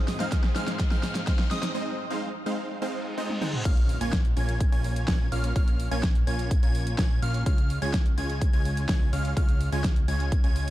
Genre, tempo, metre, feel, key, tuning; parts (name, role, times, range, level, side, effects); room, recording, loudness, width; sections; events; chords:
EDM, festival progressive house; 126 BPM; 4/4; straight; Bb minor; A4 = 440 Hz
lush unison pad; sustained chords; 0.0-1.7 s; Ab2 to Ab4; -41 LUFS; equal; chorus, sidechain pumping
plucky unison lead; arpeggios; 0.0-10.7 s; Eb6 to Ab6; -37 LUFS; equal; sidechain pumping, dub echo
supersaw stab; riff; 0.0-10.7 s; Ab3 to Ab5; -32 LUFS; right 1 dB; sidechain pumping, dub echo
riser, reverse cymbal and impact; sound effects; 0.0-5.6 s; -39 LUFS; equal
big-room dance drum kit; drums; 0.1-10.7 s; crash cymbal, hi-hat, snare drum, toms; -33 LUFS; equal; overdrive
electronic kick drum; drums; 0.3-10.4 s; -24 LUFS; equal
fat analog bass; bass; 3.7-10.7 s; Bb1 to Db2; -29 LUFS; equal; sidechain pumping
digital ambience; dark, warm production; -23 LUFS; side -15 dB against mid
0.0-3.7 A section; 3.7-10.7 B section
build-up 0.0-3.7; drum fill 0.0-1.7, 3.3-3.7; riser 0.0-1.7; break 1.7-3.7; reverse cymbal 2.9-3.7; drop 3.7-10.7; impact 3.7-5.6
0.0 Ab; 3.7 Bbm; 7.5 Db